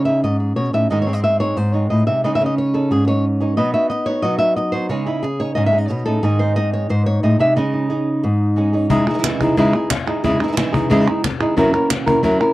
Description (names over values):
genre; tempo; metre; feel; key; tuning
flamenco; 180 BPM; 4/4; straight; C# minor; A4 = 439 Hz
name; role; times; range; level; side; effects
flamenco guitar; melody; 0.0-12.5 s; G#2 to E5; -16 LUFS; equal; none
flamenco guitar; stabs; 0.0-12.3 s; F#2 to G#4; -23 LUFS; right 4 dB; none
cajon; percussion; 8.9-12.4 s; none; -23 LUFS; left 3 dB; none
palmas hand claps; percussion; 9.1-12.5 s; none; -24 LUFS; right 8 dB; none
room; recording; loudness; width
light reverb; dry, close 1970s-style studio recording; -15 LUFS; side -17 dB against mid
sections
0.0-8.9 A section; 8.9-12.5 B section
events
nylon-string guitar solo 0.0-8.9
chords
0.0 C#sus2; 0.9 G#; 2.2 C#sus2; 3.6 B; 4.9 C#sus2; 6.2 G#; 7.6 C#sus2; 8.9 C#madd9; 11.6 F#7